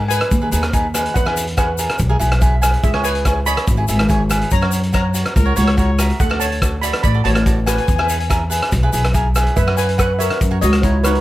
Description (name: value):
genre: calypso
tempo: 143 BPM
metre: 4/4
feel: straight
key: unclear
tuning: A4 = 441 Hz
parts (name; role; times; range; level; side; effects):
- steel pan; melody; 0.0-11.2 s; D#4 to B5; -22 LUFS; equal; plate reverb
- cavaquinho; accompaniment; 0.0-11.2 s; D#4 to G#5; -23 LUFS; right 1 dB; none
- upright bass; bass; 0.0-11.2 s; G#1 to G#2; -18 LUFS; equal; none
- loose indie drum kit; drums; 0.1-11.2 s; hi-hat, kick drum, rim click; -19 LUFS; equal; none
- egg shaker; percussion; 0.1-11.1 s; none; -29 LUFS; left 7 dB; none
- bright trumpet; second line; 5.4-6.1 s; A#4 to C#5; -24 LUFS; left 4 dB; none
room: light reverb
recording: none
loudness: -14 LUFS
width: side -16 dB against mid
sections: 0.0-11.2 A section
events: cavaquinho fill 2.2-2.8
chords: 0.0 G#m; 1.2 Eadd9; 2.8 C#m; 4.5 F#; 6.2 D; 7.9 E; 9.6 F#sus4; 10.4 F#7